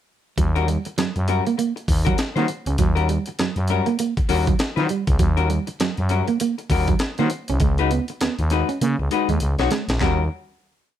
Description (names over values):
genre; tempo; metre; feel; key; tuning
funk; 100 BPM; 4/4; swing 60% on 16ths; unclear; A4 = 440 Hz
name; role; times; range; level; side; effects
hollow-body jazz guitar; accompaniment; 0.4-10.2 s; G3 to Db5; -25 LUFS; left 7 dB; none
electric guitar at the edge of break-up; riff; 0.4-10.2 s; F#3 to Db4; -25 LUFS; right 7 dB; none
growling FM bass; bass; 0.4-10.3 s; Bb1 to Eb3; -22 LUFS; equal; none
breakbeat sampler-style drum kit; drums; 0.4-10.2 s; handclaps, hi-hat, kick drum, snare drum; -23 LUFS; equal; none
room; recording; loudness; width
light reverb; none; -19 LUFS; side -11 dB against mid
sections
0.4-10.0 groove; 10.0-11.0 final chord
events
drum fill 8.8-10.0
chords
0.4 Eb7#9; 7.6 Db9sus4; 10.0 Eb7#9